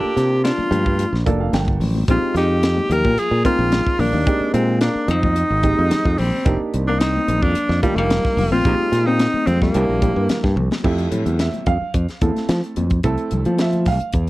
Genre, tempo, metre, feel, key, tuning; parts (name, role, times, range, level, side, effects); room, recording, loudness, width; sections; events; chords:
electric jazz fusion; 110 BPM; 4/4; straight; Bb mixolydian, F major from 10.8 s; A4 = 439 Hz
clear tenor saxophone; melody; 0.0-10.5 s; G3 to Bb4; -20 LUFS; equal
hollow-body jazz guitar; second line; 0.0-10.5 s; Eb3 to G4; -25 LUFS; left 4 dB
warm grand piano; accompaniment; 0.0-14.3 s; Ab3 to G5; -25 LUFS; right 4 dB
modern bright fingered electric bass; bass; 0.0-14.3 s; F1 to F3; -20 LUFS; equal
tight funk drum kit; drums; 0.2-14.3 s; crash cymbal, hi-hat, kick drum, snare drum, toms; -22 LUFS; equal
congas; percussion; 0.6-14.0 s; -28 LUFS; left 3 dB
little or no reverb; dry, close 1970s-style studio recording; -16 LUFS; side -18 dB against mid
0.0-10.8 A section; 10.8-14.3 B section
grand piano fill 1.0-2.1; drum fill 10.6
0.0 C13sus4; 2.1 Bb13sus4; 6.5 F13sus4; 8.7 Bb13sus4; 9.7 C7; 10.8 Fmaj9